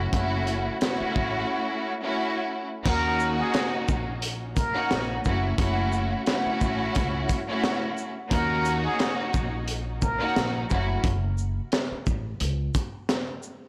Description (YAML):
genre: hip hop, boom-bap hip-hop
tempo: 88 BPM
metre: 4/4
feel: swing 55% on 16ths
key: unclear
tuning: A4 = 440 Hz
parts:
  - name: warm studio string section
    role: accompaniment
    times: 0.0-11.0 s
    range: A3 to Gb4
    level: -30 LUFS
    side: equal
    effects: cassette tape, high-pass filter, low-pass filter
  - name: upright bass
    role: bass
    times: 0.0-12.7 s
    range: Gb1 to Eb2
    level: -32 LUFS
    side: equal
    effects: transformer saturation
  - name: crunchy breakbeat drum kit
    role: drums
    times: 0.1-13.6 s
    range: crash cymbal, hi-hat, kick drum, shaker, snare drum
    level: -30 LUFS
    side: equal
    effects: none
  - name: trumpet with plunger mute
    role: melody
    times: 2.9-10.5 s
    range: Ab4 to Bb4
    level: -33 LUFS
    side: equal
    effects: high-pass filter, low-pass filter, digital delay
room: light reverb, studio reverb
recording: blown-out, overdriven recording, overdrive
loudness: -26 LUFS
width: mono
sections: 0.0-2.9 A section; 2.9-13.7 B section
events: break 1.5-2.9, 11.0-13.7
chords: 0.0 Gbm7; 2.9 Ebm7; 5.2 Gbm7; 8.3 Ebm7; 10.7 Gbm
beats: | 0.13 0.81 1.49 2.18 | 2.86 3.54 4.22 4.90 | 5.58 6.27 6.95 7.63 | 8.31 8.99 9.68 10.36 | 11.04 11.72 12.40 13.09